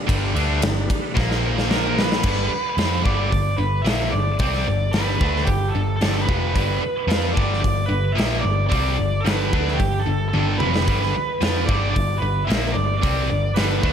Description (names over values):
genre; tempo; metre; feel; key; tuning
hard rock; 111 BPM; 4/4; straight; unclear; A4 = 440 Hz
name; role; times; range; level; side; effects
overdriven tonewheel organ; sustained chords; 0.0-2.2 s; G3 to C5; -32 LUFS; left 1 dB; chorus vibrato, slow rotary speaker
sludgy distorted guitar; riff; 0.1-13.9 s; F2 to F4; -25 LUFS; equal; overdrive
vintage muted picked electric bass; bass; 0.1-13.9 s; F1 to F2; -23 LUFS; equal; none
big rock drum kit; drums; 0.1-13.9 s; crash cymbal, hi-hat, kick drum, ride cymbal, snare drum, toms; -24 LUFS; equal; none
smooth overdriven lead guitar; melody; 1.7-13.9 s; G4 to E5; -25 LUFS; right 1 dB; none
room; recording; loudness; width
light reverb, small room ambience; none; -18 LUFS; side -8 dB against mid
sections
0.0-2.2 A section; 2.2-13.9 B section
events
drum fill 1.2-2.2, 10.3-10.9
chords
0.0 G; 1.2 Bb5; 2.2 G